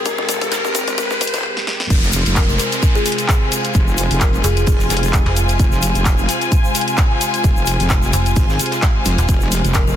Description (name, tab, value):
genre	bass house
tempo	130 BPM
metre	4/4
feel	swing 55% on 16ths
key	F minor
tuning	A4 = 439 Hz
part	sweeping resonant pad	sustained chords	0.0-10.0 s	C3 to G4	-26 LUFS	right 1 dB	chorus, sidechain pumping
part	riser and downlifter	sound effects	0.0-5.6 s	none	-24 LUFS	equal	none
part	warm studio string section	texture	0.0-10.0 s	F4 to Ab5	-24 LUFS	left 2 dB	sidechain pumping
part	kalimba	melody	0.1-4.6, 9.7-9.9 s	Ab4 to Bb4	-25 LUFS	left 4 dB	tape echo
part	wobble bass	bass	0.1-10.0 s	Eb1 to Ab1	-20 LUFS	equal	chorus, tube saturation, sidechain pumping, high-pass filter
part	electronic kick drum	drums	0.1-9.9 s	none	-16 LUFS	equal	high-pass filter on kick
part	house drum kit	drums	0.1-9.9 s	crash cymbal, handclaps, hi-hat, snare drum	-23 LUFS	left 1 dB	none
part	soft brush drum kit	drums	0.1-10.0 s	hi-hat, ride cymbal, snare drum	-28 LUFS	left 3 dB	sidechain pumping on cymbals, high-pass filter on cymbals, sidechain pumping on hats, high-pass filter on hats, soft clipping on snare, high-pass filter on snare, high-pass filter on room
part	egg shaker	percussion	0.1-10.0 s	none	-29 LUFS	left 3 dB	none
part	metallic FM bass	bass	4.4-9.3 s	Eb1 to F1	-16 LUFS	equal	tube saturation, sidechain pumping
room	light reverb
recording	dense, heavily limited modern master, high-pass filter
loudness	-14 LUFS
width	side -10 dB against mid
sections	0.0-1.9 A section; 1.9-10.0 B section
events	build-up 0.0-1.9; drum fill 0.0-1.4, 1.6-1.9; riser 0.0-1.4; drop 1.9-10.0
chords	0.0 Fm